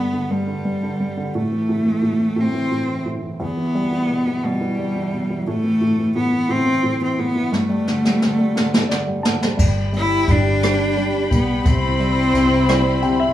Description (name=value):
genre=six-eight pop ballad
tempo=58 BPM (dotted quarters)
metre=6/8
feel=straight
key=unclear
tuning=A4 = 442 Hz
part: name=bright cello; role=melody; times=0.0-13.3 s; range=G3 to E4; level=-20 LUFS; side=equal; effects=digital delay
part: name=warm upright piano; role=accompaniment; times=0.0-13.3 s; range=E2 to A5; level=-23 LUFS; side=equal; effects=none
part: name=jazz brush drum kit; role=drums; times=7.5-13.2 s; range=crash cymbal, hi-hat, kick drum, rim click, snare drum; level=-20 LUFS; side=equal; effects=none
part: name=warm studio string section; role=sustained chords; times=9.6-13.3 s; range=E4 to B5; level=-24 LUFS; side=left 1 dB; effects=plate reverb
part: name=vintage muted fingered electric bass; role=bass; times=9.6-13.3 s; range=G1 to C2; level=-22 LUFS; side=equal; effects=none
room=moderate small room reverb, RT60 0.5 s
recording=rough home demo mix, small room reverb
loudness=-17 LUFS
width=side -12 dB against mid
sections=0.0-9.6 A section; 9.6-13.3 B section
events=drum fill 7.5-9.6; upright piano fill 8.6-9.6, 12.7-13.3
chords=0.0 G; 1.4 Am; 3.4 Em; 5.5 A5; 7.5 Gsus2; 9.6 G; 11.7 Cmaj7